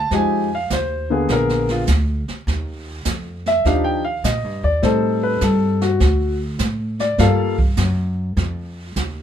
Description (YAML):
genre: jazz piano trio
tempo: 102 BPM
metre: 4/4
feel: swing 68% on 8ths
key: unclear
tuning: A4 = 440 Hz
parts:
  - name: warm concert grand piano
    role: melody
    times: 0.0-7.6 s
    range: D3 to A5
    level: -19 LUFS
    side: left 2 dB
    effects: none
  - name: upright bass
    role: bass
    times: 0.0-9.2 s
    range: Bb1 to Bb2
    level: -20 LUFS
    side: equal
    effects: none
  - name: jazz brush drum kit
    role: drums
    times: 0.1-9.2 s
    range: brushed snare drum, hi-hat, kick drum, snare drum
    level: -25 LUFS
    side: right 2 dB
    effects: none
room: moderate club ambience, RT60 0.5 s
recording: minimal, uncompressed stereo recording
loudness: -17 LUFS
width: side -9 dB against mid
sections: 0.0-9.2 A section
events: grand piano solo 0.0-9.2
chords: 0.1 Fm9; 1.3 Bb7b9; 2.5 Ebmaj9; 4.8 Am7b5; 6.0 D5; 7.2 G7(no3)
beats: | 0.11 0.70 1.29 1.88 | 2.47 3.06 3.65 4.24 | 4.83 5.41 6.00 6.59 | 7.18 7.78 8.37 8.96